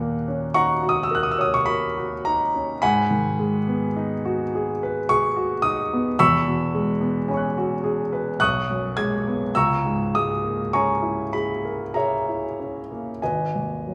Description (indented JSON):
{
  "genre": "classical, impressionist solo piano",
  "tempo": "46-56 BPM",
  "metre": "3/4",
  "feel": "rubato",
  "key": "G# minor",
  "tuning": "A4 = 440 Hz",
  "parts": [
    { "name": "clear grand piano", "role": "solo", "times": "0.0-13.9 s", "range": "G#1 to G#6", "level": "-23 LUFS", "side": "equal", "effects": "none" }
  ],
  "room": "wet recital hall reverb, RT60 1.8 s",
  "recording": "none",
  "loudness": "-23 LUFS",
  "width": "mono",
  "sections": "0.0-13.9 A section",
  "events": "none",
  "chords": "0.0 D#m7; 2.8 G#m7; 6.2 E69; 8.4 B69; 9.5 C#m6; 13.2 G#m",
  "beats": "0.53 1.65 | 2.81 3.96 5.08 | 6.18 7.27 8.39 | 9.53 10.71 11.93 | 13.21"
}